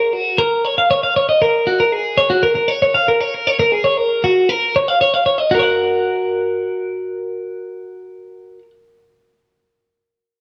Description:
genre	rock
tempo	117 BPM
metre	4/4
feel	straight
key	F# major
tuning	A4 = 439 Hz
part	twelve-string electric guitar	arpeggios	0.0-8.7 s	F#4 to F#5	-17 LUFS	equal	spring reverb
room	light reverb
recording	none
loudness	-16 LUFS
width	mono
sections	0.0-5.5 A section; 5.5-9.6 B section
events	none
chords	0.0 F#maj7; 1.1 D#m7 (rootless); 5.5 F#

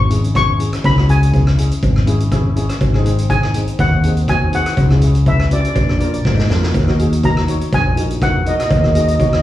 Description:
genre	calypso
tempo	122 BPM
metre	4/4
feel	swing 54% on 16ths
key	C# minor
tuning	A4 = 440 Hz
part	steel pan	melody	0.0-9.4 s	D5 to C#6	-20 LUFS	left 1 dB	slapback echo
part	woody fretless electric bass	bass	0.0-9.4 s	G#1 to G#2	-15 LUFS	equal	analog chorus
part	steel pan	accompaniment	0.1-9.4 s	B#3 to Db5	-24 LUFS	left 1 dB	slapback echo
part	street-band drum kit	drums	0.1-9.4 s	hi-hat, kick drum, rim click, snare drum	-18 LUFS	equal	none
part	cowbell	percussion	0.4-9.3 s	none	-30 LUFS	right 4 dB	slapback echo
room	little or no reverb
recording	live gig heard through the venue's PA, club reverb, studio ambience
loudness	-12 LUFS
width	side -14 dB against mid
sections	0.0-6.7 A section; 6.7-9.4 A section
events	drum fill 6.2-6.7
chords	0.0 C#m; 2.8 G#7; 4.8 C#m7; 5.8 A#7; 6.7 Ebm7

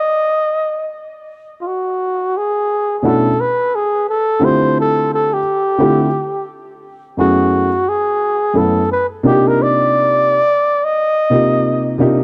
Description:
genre	hip hop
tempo	87 BPM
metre	4/4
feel	swing 57% on 16ths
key	unclear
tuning	A4 = 439 Hz
part	breathy flugelhorn	melody	0.0-12.0 s	E#4 to Eb5	-18 LUFS	equal	tape echo
part	dark baby grand piano	accompaniment	3.0-12.2 s	F#2 to A4	-17 LUFS	equal	none
room	studio ambience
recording	dry, close 1970s-style studio recording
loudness	-15 LUFS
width	mono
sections	0.0-1.3 A section; 1.3-12.2 A section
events	break 0.0-1.3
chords	0.0 N.C.; 1.3 Bm11; 4.1 Dm11; 6.8 F#m11; 9.2 Cm11

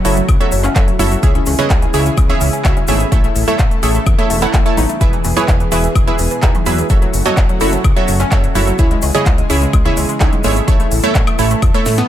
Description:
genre	progressive house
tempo	127 BPM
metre	4/4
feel	straight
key	unclear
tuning	A4 = 442 Hz
part	lush unison pad	sustained chords	0.0-12.1 s	B2 to A4	-24 LUFS	left 1 dB	chorus, sidechain pumping
part	glassy wavetable pluck	arpeggios	0.0-12.0 s	E3 to B4	-21 LUFS	left 2 dB	chorus, sidechain pumping, ping-pong delay
part	wide unison pluck	stabs	0.0-12.0 s	C#3 to A5	-18 LUFS	right 4 dB	sidechain pumping, ping-pong delay
part	fat analog bass	bass	0.0-12.0 s	E1 to A2	-18 LUFS	equal	sidechain pumping
part	big-room dance drum kit	drums	0.0-12.1 s	handclaps, hi-hat, snare drum, woodblock	-23 LUFS	left 1 dB	overdrive, studio reverb
part	tube shaker	percussion	0.1-12.1 s	none	-29 LUFS	left 4 dB	none
part	woodblock and congas	percussion	0.2-12.0 s	none	-28 LUFS	right 2 dB	sidechain pumping on perc
part	electronic kick drum	drums	0.3-11.7 s	none	-14 LUFS	equal	studio reverb
room	little or no reverb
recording	none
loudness	-11 LUFS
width	side -12 dB against mid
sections	0.0-12.1 A section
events	drum fill 11.9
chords	0.0 F#m7; 1.2 C#m; 3.1 A; 5.0 E; 6.9 F#m7; 8.8 C#m; 10.7 A

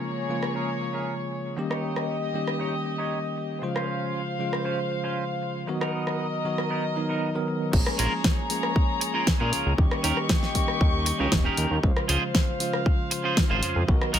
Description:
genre	nu-disco, nu disco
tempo	117 BPM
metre	4/4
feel	straight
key	Bb dorian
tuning	A4 = 440 Hz
part	bell-like tine electric piano	accompaniment	0.0-14.2 s	Db3 to C5	-30 LUFS	equal	fast stereo tremolo, sidechain pumping, ping-pong delay
part	dark chamber string section	sustained chords	0.0-14.2 s	Bb3 to Db6	-31 LUFS	left 2 dB	sidechain pumping
part	clean electric guitar	riff	0.0-14.2 s	B3 to Db5	-31 LUFS	right 3 dB	wide subtle chorus, low-pass filter, ping-pong delay
part	pop drum kit	drums	0.4-14.2 s	crash cymbal, hi-hat, rim click, snare drum	-28 LUFS	equal	none
part	fat analog bass	bass	7.7-14.2 s	Eb1 to Bb2	-26 LUFS	equal	none
part	electronic kick drum	drums	7.7-14.0 s	none	-24 LUFS	equal	none
room	light reverb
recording	none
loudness	-23 LUFS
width	side -10 dB against mid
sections	0.0-7.7 A section; 7.7-14.2 B section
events	drop 7.7-14.2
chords	0.0 Bbm7; 1.6 Eb7; 3.6 Dbmaj7; 5.7 Bmaj7; 7.7 Bbm7; 9.8 Eb7; 11.8 Dbmaj7

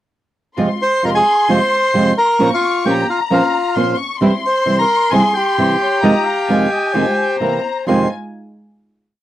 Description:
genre	tango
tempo	132 BPM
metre	4/4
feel	rubato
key	F minor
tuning	A4 = 442 Hz
part	dark studio violin section	second line	0.6-8.1 s	Ab5 to Db6	-22 LUFS	left 6 dB	none
part	nylon-string guitar	accompaniment	0.6-8.1 s	F2 to C5	-16 LUFS	right 2 dB	none
part	muted studio string section	stabs	0.6-8.1 s	G3 to F4	-24 LUFS	equal	none
part	bandoneon	melody	0.8-8.1 s	F4 to C6	-15 LUFS	equal	none
part	bright clarinet	second line	5.8-8.1 s	C5 to F5	-22 LUFS	left 5 dB	none
room	light reverb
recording	dry, close 1970s-style studio recording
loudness	-13 LUFS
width	side -13 dB against mid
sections	0.6-7.9 A section; 7.9-9.2 final chord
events	none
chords	0.6 Fm; 2.4 Bbmadd9; 4.2 C; 6.0 Fm7; 7.4 C7; 7.9 Fm7

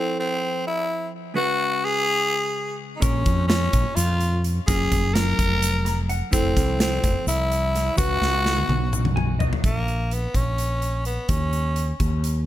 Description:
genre	progressive instrumental, band music in an uneven meter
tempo	254 BPM (eighths)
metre	7/8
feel	straight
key	unclear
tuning	A4 = 438 Hz
part	raspy tenor saxophone	melody	0.0-12.0 s	Bb3 to Bb4	-25 LUFS	left 1 dB	ping-pong delay
part	vintage hollow-body jazz guitar	accompaniment	0.0-9.6 s	Bb2 to Bb5	-30 LUFS	equal	none
part	mellow fretless electric bass	bass	3.0-12.5 s	F1 to F2	-24 LUFS	equal	none
part	big rock drum kit	drums	3.0-12.3 s	hi-hat, kick drum, snare drum, toms	-24 LUFS	equal	none
part	egg shaker	percussion	3.0-9.5 s	none	-33 LUFS	left 6 dB	none
room	little or no reverb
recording	none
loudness	-20 LUFS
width	side -13 dB against mid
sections	0.0-9.6 A section; 9.6-12.5 B section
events	hollow-body jazz guitar fill 5.6-6.3, 8.9-9.6; drum fill 8.2-9.6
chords	0.0 Fmaj7; 1.4 Db7sus4; 3.0 Bbm7; 4.7 Gbmaj7; 6.3 Fmaj7; 8.0 Db7sus4; 9.6 Bbm; 11.3 Dbsus2/Eb

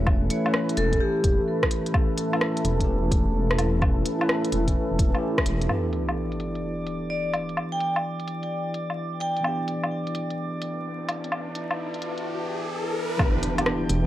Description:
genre	future garage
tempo	128 BPM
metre	4/4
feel	swing 66% on 16ths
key	E dorian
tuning	A4 = 444 Hz
part	tine electric piano	accompaniment	0.0-14.1 s	E3 to B4	-30 LUFS	left 1 dB	medium stereo tremolo, sidechain pumping, tape echo
part	deep dark ambient pad	sustained chords	0.0-14.1 s	A3 to A5	-32 LUFS	equal	chorus, built-in reverb, vintage 12-bit sampler grit, sidechain pumping
part	dark detuned saw bass	bass	0.0-5.7, 13.9-14.1 s	E1	-25 LUFS	equal	sidechain pumping
part	electronic kick drum	drums	0.1-5.4, 13.2-13.3 s	none	-24 LUFS	equal	none
part	organic electronic drum kit	drums	0.1-14.0 s	hi-hat, rim click, woodblock	-28 LUFS	left 1 dB	low-pass filter on hats, low-pass filter on snare, low-pass filter on perc
part	vibraphone with hard mallets	melody	0.8-1.4, 7.1-9.7 s	G4 to G5	-30 LUFS	equal	analog delay
part	sub drop, riser and impact	sound effects	5.7-14.1 s	none	-32 LUFS	equal	none
part	drifting glass-harmonics texture	texture	6.1-14.1 s	D5 to G5	-36 LUFS	equal	chorus, built-in reverb
room	light reverb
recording	dry, gritty hardware recording, vinyl crackle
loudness	-23 LUFS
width	side -14 dB against mid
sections	0.0-5.7 A section; 5.7-13.2 B section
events	band accent 5.3; impact 5.7-7.6, 13.2-14.1; riser 10.9-13.2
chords	0.0 A/E; 5.7 Em7

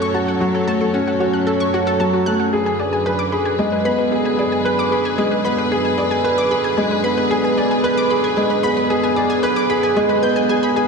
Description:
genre	piano and strings electronica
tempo	113 BPM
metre	4/4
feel	straight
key	unclear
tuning	A4 = 440 Hz
part	dark studio string section	sustained chords	0.0-10.9 s	F#2 to C#5	-22 LUFS	right 2 dB	none
part	analog pluck	arpeggios	0.0-10.9 s	F#4 to G6	-23 LUFS	equal	chorus, tape echo
part	warm grand piano	riff	0.0-10.9 s	F#3 to B4	-18 LUFS	equal	tape echo
room	wet lush hall reverb, RT60 2.5 s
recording	dark, warm production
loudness	-15 LUFS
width	side -4 dB against mid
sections	0.0-10.9 A section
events	build-up 0.0-10.9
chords	0.0 F#m; 2.5 G#dim/F#

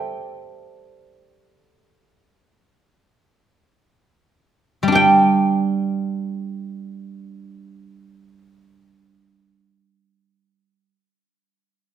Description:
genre	chinese traditional, Chinese solo plucked strings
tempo	free time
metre	none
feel	none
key	G zhi mode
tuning	A4 = 440 Hz
part	guzheng	solo	0.0-10.9 s	G3 to G5	-17 LUFS	right 2 dB	none
room	wet scoring stage reverb, RT60 1.4 s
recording	recorded in a church or concert hall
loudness	-16 LUFS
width	side -10 dB against mid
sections	0.0-4.9 A section; 4.9-11.1 B section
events	slowing down 0.0-4.9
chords	none

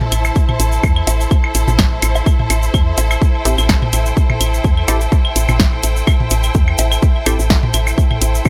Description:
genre	minimal techno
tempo	126 BPM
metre	4/4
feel	swing 54% on 16ths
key	A minor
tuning	A4 = 440 Hz
part	electronic toms, claves, woodblock and bongos	percussion	0.0-8.5 s	none	-23 LUFS	equal	digital delay
part	clear symphonic string section	texture	0.0-8.5 s	E4 to A5	-25 LUFS	equal	sidechain pumping
part	woody FM bass	bass	0.1-8.5 s	A1 to E2	-19 LUFS	equal	tube saturation, sidechain pumping
part	house drum kit	drums	0.1-8.3 s	hi-hat, snare drum	-20 LUFS	equal	none
part	tube shaker	percussion	0.1-8.5 s	none	-29 LUFS	equal	none
part	electronic kick drum	drums	0.4-8.5 s	none	-16 LUFS	equal	none
part	pulsing gated texture	texture	2.3-8.5 s	E5	-34 LUFS	equal	chorus, built-in reverb, sidechain pumping
part	filtered dub chord stab	stabs	3.5-7.4 s	C4 to A4	-26 LUFS	equal	chorus, digital delay
room	little or no reverb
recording	none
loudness	-15 LUFS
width	mono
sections	0.0-8.5 A section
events	none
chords	0.0 Am7

